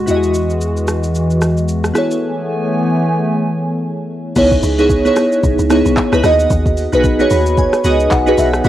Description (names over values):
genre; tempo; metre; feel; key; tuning
amapiano; 112 BPM; 4/4; swing 58% on 16ths; C# minor; A4 = 439 Hz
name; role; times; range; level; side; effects
glassy digital keys; accompaniment; 0.0-8.7 s; B3 to B5; -14 LUFS; equal; chorus, tremolo, phaser, cassette tape, plate reverb
hollow soft pad; sustained chords; 0.0-4.3 s; E3 to G#5; -17 LUFS; equal; chorus, sidechain pumping, cassette tape, plate reverb
punchy sub bass; bass; 0.1-1.9 s; E2; -19 LUFS; equal; none
smooth R&B drum kit; drums; 0.1-8.7 s; crash cymbal, handclaps, hi-hat, kick drum, rim click, shaker; -19 LUFS; equal; cassette tape
deep log drum bass; bass; 4.4-8.7 s; B1 to E2; -18 LUFS; equal; none
room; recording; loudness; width
light reverb; home recording on cassette; -12 LUFS; side -13 dB against mid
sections
0.0-4.4 A section; 4.4-8.7 B section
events
break 2.2-4.4; drop 4.4-8.7; synth keys fill 7.0-8.6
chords
0.1 Emaj9; 2.0 Amaj9/E; 4.4 C#m9; 6.2 G#m7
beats
| 0.08 0.61 1.15 1.68 | 2.22 2.75 3.29 3.83 | 4.36 4.90 5.43 5.97 | 6.50 7.04 7.58 8.11 | 8.65